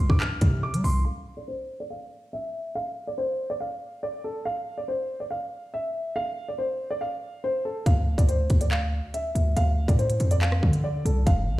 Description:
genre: hip hop, drill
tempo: 141 BPM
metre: 4/4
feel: half-time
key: D minor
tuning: A4 = 439 Hz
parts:
  - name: dark concert grand piano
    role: melody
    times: 0.0-11.6 s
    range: A4 to F6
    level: -30 LUFS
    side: equal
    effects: low-pass filter, slapback echo, plate reverb
  - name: hard-hitting 808-style bass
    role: bass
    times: 0.0-1.0, 7.9-11.6 s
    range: F1 to G3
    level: -23 LUFS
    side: equal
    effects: none
  - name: drill drum kit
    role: drums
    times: 0.1-0.9, 7.9-11.4 s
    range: handclaps, hi-hat, kick drum, rim click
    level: -23 LUFS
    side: equal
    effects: none
room: light reverb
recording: played on a big sound system in a bare room, stone room reverb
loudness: -24 LUFS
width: side -16 dB against mid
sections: 0.0-1.1 A section; 1.1-7.9 B section; 7.9-11.6 C section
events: filter sweep on grand piano 1.1-7.9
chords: 0.0 Csus4; 1.1 N.C.; 7.9 Dm

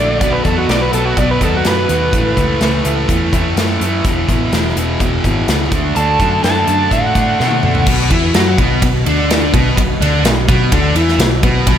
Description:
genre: blues rock power trio and southern rock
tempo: 126 BPM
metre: 4/4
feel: straight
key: unclear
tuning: A4 = 441 Hz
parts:
  - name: overdriven slide guitar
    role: melody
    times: 0.0-3.1, 6.0-7.8 s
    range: F#4 to A5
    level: -17 LUFS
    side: right 1 dB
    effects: none
  - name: thick fuzz guitar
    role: riff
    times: 0.0-11.8 s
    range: E2 to F#4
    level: -16 LUFS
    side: equal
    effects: distortion
  - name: vintage muted picked electric bass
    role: bass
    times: 0.0-11.8 s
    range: E1 to B2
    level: -18 LUFS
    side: equal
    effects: none
  - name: big rock drum kit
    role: drums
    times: 0.2-11.8 s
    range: crash cymbal, hi-hat, kick drum, ride cymbal, snare drum, toms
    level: -17 LUFS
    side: equal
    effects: none
room: moderate lush hall reverb, RT60 1.7 s, studio ambience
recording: big arena sound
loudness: -11 LUFS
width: side -9 dB against mid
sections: 0.0-7.9 A section; 7.9-11.8 B section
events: drum fill 7.4-7.9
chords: 0.2 B; 2.1 A; 4.0 E5; 5.7 D; 7.9 B5

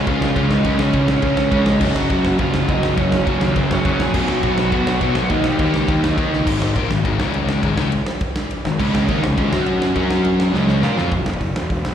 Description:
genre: punk rock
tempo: 206 BPM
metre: 4/4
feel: straight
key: unclear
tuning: A4 = 440 Hz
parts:
  - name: smooth overdriven lead guitar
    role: melody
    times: 0.0-5.9 s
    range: Bb3 to Ab5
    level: -24 LUFS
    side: right 4 dB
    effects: slapback echo, ping-pong delay
  - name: crunchy overdriven guitar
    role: riff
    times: 0.0-11.1 s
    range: Gb2 to Bb4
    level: -21 LUFS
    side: left 7 dB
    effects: slapback echo
  - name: overdriven semi-hollow guitar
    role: riff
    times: 0.0-6.5, 8.8-11.1 s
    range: Gb2 to Bb4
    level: -21 LUFS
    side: right 7 dB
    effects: none
  - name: fuzz picked electric bass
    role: bass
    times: 0.0-11.9 s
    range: E1 to Eb3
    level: -22 LUFS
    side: equal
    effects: overdrive
  - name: big rock drum kit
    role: drums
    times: 0.1-11.9 s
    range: crash cymbal, hi-hat, kick drum, ride cymbal, snare drum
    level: -22 LUFS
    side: equal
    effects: none
room: small room ambience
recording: live gig heard through the venue's PA, recital hall reverb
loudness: -16 LUFS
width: side -9 dB against mid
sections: 0.0-6.5 A section; 6.5-11.1 B section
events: drum fill 6.3, 10.5-11.1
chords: 0.0 Db; 1.8 Gb5; 4.1 B5; 5.3 Eb7; 6.5 Ab5; 7.2 Db5; 7.6 Ab5; 8.8 Db5; 9.5 Gb5; 10.5 Db5; 11.1 N.C.

